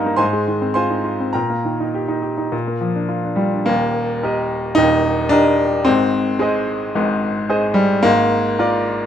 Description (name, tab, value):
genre	classical, virtuoso piano study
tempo	100-112 BPM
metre	4/4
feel	rubato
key	Eb major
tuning	A4 = 442 Hz
part	clear baby grand piano	solo	0.0-9.1 s	Eb1 to C6	-16 LUFS	equal	none
room	light reverb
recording	none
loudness	-16 LUFS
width	side -9 dB against mid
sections	0.0-3.7 A section; 3.7-9.1 B section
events	none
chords	0.2 Fm7/Ab; 1.3 Eb/Bb; 2.5 Bb; 3.7 Eb; 5.9 Ab; 8.0 Bb7/Ab